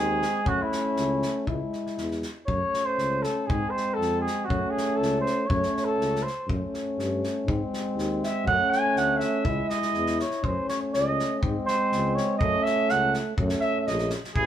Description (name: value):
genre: balkan folk, Balkan brass band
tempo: 121 BPM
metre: 2/4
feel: straight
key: F# dorian sharp4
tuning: A4 = 438 Hz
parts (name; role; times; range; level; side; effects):
- warm flugelhorn; second line; 0.0-14.5 s; E4 to G#5; -26 LUFS; right 2 dB; none
- mellow euphonium; accompaniment; 0.0-14.1 s; G#3 to A3; -32 LUFS; right 4 dB; none
- warm French horn; accompaniment; 0.0-14.2 s; B#3 to E4; -30 LUFS; left 4 dB; none
- mellow tuba; bass; 0.0-14.5 s; A1 to G#2; -32 LUFS; equal; none
- unplugged drum kit; percussion; 0.2-14.5 s; kick drum, snare drum; -32 LUFS; left 1 dB; none
- warm trumpet; melody; 14.3-14.5 s; G#4; -24 LUFS; right 2 dB; none
room: moderate stone room reverb, RT60 1.3 s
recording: band playing live in one room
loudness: -23 LUFS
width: side -10 dB against mid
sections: 0.0-14.4 A section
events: speeding up 0.0-14.5; flugelhorn solo 0.0-14.4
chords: 0.5 F#m; 1.5 C#m; 2.5 F#m; 3.5 G#; 4.5 F#m; 7.5 G#; 8.5 F#m; 9.5 C#m; 10.5 F#m; 11.4 G#; 12.4 F#m